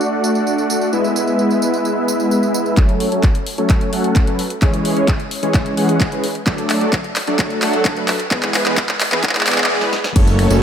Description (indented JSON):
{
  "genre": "EDM, festival progressive house",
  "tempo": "130 BPM",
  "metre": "4/4",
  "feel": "straight",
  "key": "F# minor",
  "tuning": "A4 = 440 Hz",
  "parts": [
    { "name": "supersaw chords", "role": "riff", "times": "0.0-10.6 s", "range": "E3 to F#5", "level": "-17 LUFS", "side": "equal", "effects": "sidechain pumping, low-pass filter, dub echo" },
    { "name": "house drum kit", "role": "drums", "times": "0.0-10.6 s", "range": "crash cymbal, finger snaps, handclaps, hi-hat, snare drum, tambourine", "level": "-21 LUFS", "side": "equal", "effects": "none" },
    { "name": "electronic kick drum", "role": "drums", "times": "2.8-10.3 s", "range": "none", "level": "-16 LUFS", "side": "equal", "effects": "none" },
    { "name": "fat analog bass", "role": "bass", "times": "10.2-10.6 s", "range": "F#1", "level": "-15 LUFS", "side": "equal", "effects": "sidechain pumping" }
  ],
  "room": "moderate lush hall reverb, RT60 1.8 s, digital ambience",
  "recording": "high-pass filter",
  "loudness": "-14 LUFS",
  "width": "side -8 dB against mid",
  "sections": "0.0-2.8 A section; 2.8-10.2 B section",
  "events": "build-up 2.8-10.2; drum fill 2.8-9.7, 9.8-10.2; filter sweep on supersaw synth 2.8-10.2; filter sweep 2.8-10.2; break 9.7-10.2",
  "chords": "0.0 D; 0.9 E; 2.8 F#m; 4.6 C#m; 6.5 D; 8.3 E"
}